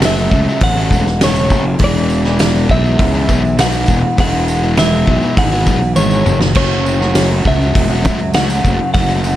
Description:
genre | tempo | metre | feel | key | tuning
indie rock | 101 BPM | 4/4 | straight | unclear | A4 = 435 Hz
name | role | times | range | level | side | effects
clean electric guitar | melody | 0.0-9.4 s | C#5 to F#5 | -19 LUFS | equal | tape echo
crunchy overdriven guitar | riff | 0.0-9.4 s | E2 to A4 | -20 LUFS | left 5 dB | none
crunchy overdriven guitar | riff | 0.0-9.4 s | F#2 to F#4 | -21 LUFS | right 6 dB | lush chorus
fuzz fingered electric bass | bass | 0.0-9.4 s | E1 to C#2 | -16 LUFS | equal | overdrive
loose indie drum kit | drums | 0.0-9.1 s | crash cymbal, hi-hat, kick drum, snare drum, splash cymbal, toms | -16 LUFS | equal | none
tambourine | percussion | 0.0-9.4 s | none | -33 LUFS | right 5 dB | none
room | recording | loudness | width
small room ambience | dark, warm production | -11 LUFS | side -13 dB against mid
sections
0.0-9.4 A section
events
drum fill 6.0-6.6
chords
0.0 F#m; 1.8 E; 6.6 F#m

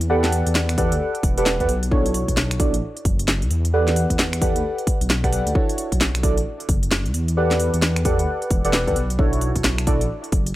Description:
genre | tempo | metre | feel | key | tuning
UK garage, two-step garage | 132 BPM | 4/4 | swing 62% on 16ths | unclear | A4 = 440 Hz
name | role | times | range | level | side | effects
dark detuned saw bass | bass | 0.0-10.6 s | E1 to G2 | -22 LUFS | equal | none
house drum kit | drums | 0.0-10.5 s | finger snaps, hi-hat, snare drum | -23 LUFS | equal | none
deep mellow chord stab | stabs | 0.1-10.0 s | D4 to F#5 | -23 LUFS | right 1 dB | chorus, phaser, analog delay
electronic kick drum | drums | 0.8-10.4 s | none | -22 LUFS | equal | none
room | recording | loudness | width
little or no reverb | dry, gritty hardware recording | -18 LUFS | side -15 dB against mid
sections
0.0-10.6 A section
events
none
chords
0.0 Em11; 1.9 Bm11; 3.5 Em11; 5.6 Bm11; 7.1 Em11; 9.2 Bm11

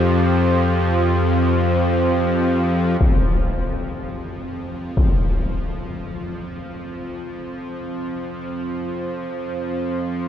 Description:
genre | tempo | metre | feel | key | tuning
dark ambient drone | free time | none | none | unclear | A4 = 440 Hz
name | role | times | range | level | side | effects
deep dark ambient pad | sustained chords | 0.0-10.3 s | C4 to C5 | -24 LUFS | right 2 dB | chorus, built-in reverb
bowed-like drone | drone | 0.0-10.3 s | F2 to F3 | -22 LUFS | left 1 dB | built-in reverb
bubbling stepped-filter texture | texture | 0.0-3.0 s | G4 | -31 LUFS | equal | chorus, built-in reverb
impact | percussion | 3.0-5.2 s | none | -21 LUFS | left 1 dB | low-pass filter on sfx
room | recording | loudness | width
wet huge ambient reverb, RT60 7.9 s | dreamy mix soaked in reverb | -19 LUFS | side -9 dB against mid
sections
0.0-3.0 A section; 3.0-10.3 B section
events
fade-in on synth drone 3.0-10.3; fade-in on ambient pad 3.0-10.3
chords
0.0 F5

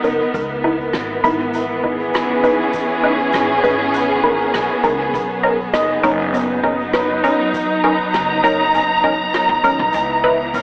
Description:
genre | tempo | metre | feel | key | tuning
ambient dub | 100 BPM | 4/4 | straight | C# dorian | A4 = 441 Hz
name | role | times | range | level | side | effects
warm studio string section | sustained chords | 0.0-10.6 s | E3 to A#5 | -20 LUFS | equal | none
filtered dub chord stab | stabs | 0.0-10.4 s | C#4 to B4 | -22 LUFS | equal | phaser, dub echo
upright bass | bass | 0.0-10.6 s | F#1 to D#2 | -32 LUFS | equal | tube saturation
shaker and rim click | drums | 0.0-10.6 s | none | -30 LUFS | equal | small room ambience, dub echo
electronic kick drum | drums | 0.3-9.6 s | none | -41 LUFS | equal | small room ambience
handpan | arpeggios | 4.2-9.3 s | B3 to D#5 | -26 LUFS | equal | dub echo
room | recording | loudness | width
moderate plate reverb, RT60 2.5 s | echo-heavy mix, AM radio sound | -17 LUFS | mono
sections
0.0-9.9 A section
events
none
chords
0.3 C#m7; 5.1 Bmaj7; 9.9 C#m7

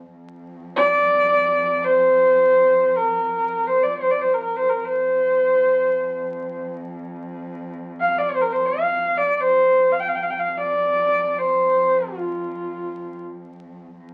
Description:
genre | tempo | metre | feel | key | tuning
mongolian traditional, Mongolian folk | free time | none | none | F zhi mode | A4 = 435 Hz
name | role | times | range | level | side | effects
dark cello | drone | 0.0-14.1 s | F2 | -39 LUFS | equal | none
rich horsehead fiddle | melody | 0.8-13.2 s | F4 to G5 | -20 LUFS | equal | none
room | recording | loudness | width
wet club reverb, RT60 0.5 s | very old 78 rpm record, vinyl crackle | -20 LUFS | mono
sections
0.0-14.0 A section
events
none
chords
none

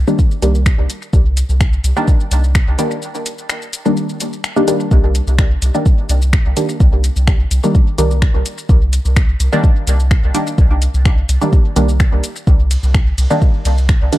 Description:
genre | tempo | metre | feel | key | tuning
dub techno | 127 BPM | 4/4 | straight | C minor | A4 = 440 Hz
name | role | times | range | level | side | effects
round analog bass | bass | 0.0-14.1 s | C2 | -14 LUFS | equal | sidechain pumping
filtered dub chord stab | stabs | 0.1-14.2 s | Eb3 to D4 | -19 LUFS | equal | chorus, phaser, sidechain pumping, dub echo
deep house drum kit | drums | 0.1-14.2 s | finger snaps, hi-hat, ride cymbal, shaker | -24 LUFS | left 2 dB | dub echo
electronic kick drum | drums | 0.2-14.0 s | none | -12 LUFS | equal | none
room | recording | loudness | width
digital ambience | dark, warm production | -12 LUFS | side -16 dB against mid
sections
0.0-4.9 A section; 4.9-14.2 A section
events
filter sweep on synth stab 0.0-4.9; break 3.0-4.9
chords
0.0 Cm9

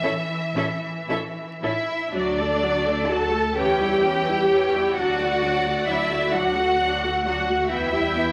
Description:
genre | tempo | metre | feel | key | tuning
classical, slow romantic movement for string orchestra | 37-46 BPM (dotted quarters) | 6/8 | rubato | D major | A4 = 440 Hz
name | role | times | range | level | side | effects
warm symphonic violin section | melody | 0.0-8.3 s | B4 to G5 | -33 LUFS | equal | none
rich symphonic violin section | second line | 0.0-8.3 s | A4 to A5 | -27 LUFS | equal | none
rich symphonic viola section | accompaniment | 0.0-8.3 s | E3 to A4 | -30 LUFS | equal | none
dark chamber double bass section | bass | 0.0-8.3 s | A1 to E2 | -36 LUFS | equal | none
rich symphonic cello section | bass | 0.0-8.3 s | E3 to A4 | -27 LUFS | equal | none
room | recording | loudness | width
wet large studio reverb, RT60 1.3 s | vinyl crackle | -23 LUFS | mono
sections
0.0-2.1 A section; 2.1-8.3 B section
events
none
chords
0.0 A; 2.1 D; 3.6 C#dim/E; 5.0 D; 7.7 Em

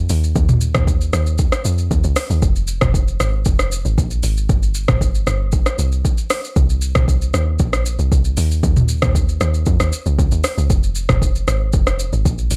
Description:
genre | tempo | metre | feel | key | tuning
amapiano | 116 BPM | 4/4 | straight | F minor | A4 = 439 Hz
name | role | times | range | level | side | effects
deep log drum bass | bass | 0.0-12.6 s | F1 to F2 | -20 LUFS | equal | none
afro-pop drum kit | drums | 0.1-12.6 s | hi-hat, kick drum, rim click, shaker, toms | -20 LUFS | equal | overdrive
room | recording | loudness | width
little or no reverb | none | -17 LUFS | mono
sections
0.0-12.6 A section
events
none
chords
none

